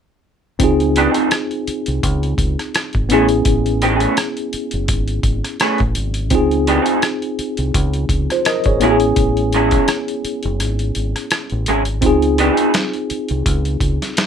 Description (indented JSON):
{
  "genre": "R&B, neo-soul",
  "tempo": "84 BPM",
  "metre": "4/4",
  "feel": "swing 56% on 16ths",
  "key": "Db major",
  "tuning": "A4 = 440 Hz",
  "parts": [
    { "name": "tine electric piano", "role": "accompaniment", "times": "0.6-14.3 s", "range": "Cb4 to Eb5", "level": "-19 LUFS", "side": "left 1 dB", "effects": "overdrive, fast stereo tremolo" },
    { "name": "deep dub fingered electric bass", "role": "bass", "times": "0.6-14.0 s", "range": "Gb1 to Db2", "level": "-20 LUFS", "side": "equal", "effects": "none" },
    { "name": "boom bap sampler-style drum kit", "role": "drums", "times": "0.6-14.3 s", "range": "hi-hat, kick drum, rim click, snare drum", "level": "-20 LUFS", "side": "equal", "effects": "none" },
    { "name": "electric guitar through a small old amp", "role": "second line", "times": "1.0-12.7 s", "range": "E3 to Ab4", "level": "-16 LUFS", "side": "right 2 dB", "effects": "none" }
  ],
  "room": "light reverb",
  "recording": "none",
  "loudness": "-15 LUFS",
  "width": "side -8 dB against mid",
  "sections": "0.6-14.3 A section",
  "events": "break 10.6-12.0",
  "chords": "0.6 Dbmaj9; 3.1 Amaj7; 6.3 Dbmaj9; 8.8 Amaj7; 12.0 Dbmaj9"
}